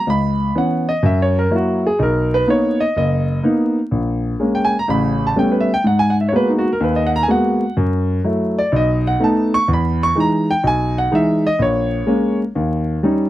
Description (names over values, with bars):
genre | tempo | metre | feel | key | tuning
solo jazz | 125 BPM | 4/4 | swing 68% on 8ths | unclear | A4 = 440 Hz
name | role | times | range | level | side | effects
warm grand piano | solo | 0.0-13.3 s | F#1 to C#6 | -15 LUFS | equal | none
room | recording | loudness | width
moderate booth ambience, RT60 0.2 s | dry, close 1970s-style studio recording, vinyl crackle | -15 LUFS | side -14 dB against mid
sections
0.0-13.3 A section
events
grand piano solo 0.0-13.3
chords
0.1 C#m7; 1.0 F#7; 2.0 Bmaj7; 3.9 A#m7; 4.9 A9; 5.8 G#m9; 7.8 F#m7; 8.7 B7; 9.7 Emaj7; 11.6 A#m7; 12.5 D#7